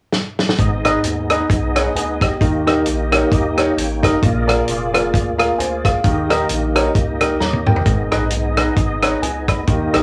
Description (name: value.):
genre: uptempo gospel.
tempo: 132 BPM.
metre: 4/4.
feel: swing 57% on 8ths.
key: G# harmonic minor.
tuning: A4 = 440 Hz.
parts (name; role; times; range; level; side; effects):
warm soul drum kit; drums; 0.1-10.0 s; hi-hat, kick drum, rim click, snare drum, toms; -21 LUFS; equal; none.
warm concert grand piano; accompaniment; 0.6-10.0 s; G#2 to B5; -22 LUFS; equal; cassette tape.
bright tonewheel organ; sustained chords; 0.6-10.0 s; A#3 to G5; -25 LUFS; equal; slow rotary speaker, chorus vibrato, cassette tape.
rubbery square bass; bass; 0.6-10.0 s; E#1 to D#2; -26 LUFS; equal; none.
room: little or no reverb.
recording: home recording on cassette.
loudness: -17 LUFS.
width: mono.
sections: 0.6-7.9 A section; 7.9-10.0 B section.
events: drum fill 0.1-0.6, 7.4-7.9.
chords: 0.0 N.C.; 0.6 G#m; 2.4 D#; 4.2 A#7; 6.0 D#; 7.9 G#m.